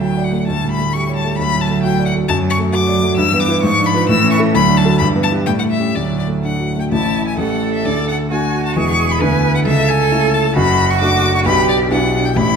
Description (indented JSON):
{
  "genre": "quick classical-period movement for piano trio",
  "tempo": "132 BPM",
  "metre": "2/4",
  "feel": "rubato",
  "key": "D major, A major from 6.9 s",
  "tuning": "A4 = 443 Hz",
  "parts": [
    { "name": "rich violin", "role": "melody", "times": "0.0-12.6 s", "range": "D5 to E6", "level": "-19 LUFS", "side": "left 6 dB", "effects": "none" },
    { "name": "clear cello", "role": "second line", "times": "0.0-12.6 s", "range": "E3 to B4", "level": "-19 LUFS", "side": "right 8 dB", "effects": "none" },
    { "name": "dark baby grand piano", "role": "accompaniment", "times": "0.0-12.6 s", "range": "E1 to D5", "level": "-16 LUFS", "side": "equal", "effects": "none" }
  ],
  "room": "wet recital hall reverb, RT60 1.7 s",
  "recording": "none",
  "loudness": "-13 LUFS",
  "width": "side -6 dB against mid",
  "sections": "0.0-6.9 A section; 6.9-12.6 B section",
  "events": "none",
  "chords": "0.5 A7/D; 1.4 D; 2.3 D/F#; 3.2 Em/G; 3.6 G#dim7; 4.1 A; 4.5 D; 5.0 Em/G; 5.5 A7; 5.9 D; 6.9 A; 7.4 A7; 7.8 D; 8.8 E; 9.2 E7/D; 9.7 A/C#; 10.6 D/F#; 11.5 G/B; 11.9 Em7/B"
}